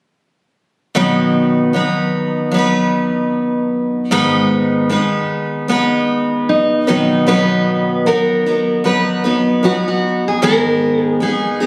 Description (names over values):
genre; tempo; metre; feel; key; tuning
pop; 76 BPM; 4/4; swing 60% on 16ths; B major; A4 = 436 Hz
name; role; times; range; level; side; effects
picked steel-string acoustic guitar; accompaniment; 0.9-11.7 s; G#2 to B4; -16 LUFS; equal; none
fingerpicked steel-string acoustic guitar; melody; 6.5-11.7 s; D#4 to B4; -19 LUFS; equal; none
room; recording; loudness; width
moderate recital hall reverb, RT60 1.3 s; recorded on a phone in the room, studio reverb, compression; -16 LUFS; mono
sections
0.9-7.3 A section; 7.3-11.7 B section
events
none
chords
0.9 B; 4.1 G#m; 6.9 B; 10.4 G#m